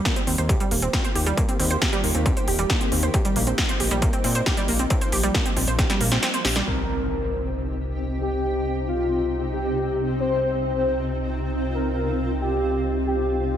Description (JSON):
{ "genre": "uplifting trance", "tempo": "136 BPM", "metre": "4/4", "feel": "straight", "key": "C minor", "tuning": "A4 = 440 Hz", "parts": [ { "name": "shimmering ambient pad", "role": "sustained chords", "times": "0.8-13.6 s", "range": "C3 to G4", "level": "-29 LUFS", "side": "left 1 dB", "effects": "chorus, built-in reverb, sidechain pumping" }, { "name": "analog pluck", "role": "arpeggios", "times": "0.0-6.7 s", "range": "G3 to C5", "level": "-26 LUFS", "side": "right 3 dB", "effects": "chorus, sidechain pumping, tape echo" }, { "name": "big-room dance drum kit", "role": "drums", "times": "0.1-6.6 s", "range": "hi-hat, snare drum", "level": "-25 LUFS", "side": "equal", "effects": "none" }, { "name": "electronic kick drum", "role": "drums", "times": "0.1-5.9 s", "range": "none", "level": "-24 LUFS", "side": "equal", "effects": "distortion, overdrive" }, { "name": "fat analog bass", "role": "bass", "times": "0.3-13.6 s", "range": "Eb1 to Bb2", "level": "-27 LUFS", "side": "equal", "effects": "sidechain pumping" }, { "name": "warm velvety synth lead", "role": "second line", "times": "6.7-13.6 s", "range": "F4 to C5", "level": "-26 LUFS", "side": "left 1 dB", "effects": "chorus, tape echo" }, { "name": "impact", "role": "sound effects", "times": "6.7-8.4 s", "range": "none", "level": "-32 LUFS", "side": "left 1 dB", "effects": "none" } ], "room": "light reverb", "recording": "none", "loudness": "-20 LUFS", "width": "side -10 dB against mid", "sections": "0.0-6.7 A section; 6.7-13.6 B section", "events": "drum fill 5.8-6.7; kick drops out 6.2-6.7; impact 6.7-8.4", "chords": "0.0 Ebadd9; 3.1 Bbsus4; 6.7 Cm", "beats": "0.05 0.49 0.93 | 1.38 1.82 2.26 2.70 | 3.14 3.58 4.02 4.46 | 4.91 5.35 5.79 6.23 | 6.67 7.11 7.55 7.99 | 8.43 8.88 9.32 9.76 | 10.20 10.64 11.08 11.52 | 11.96 12.40 12.85 13.29" }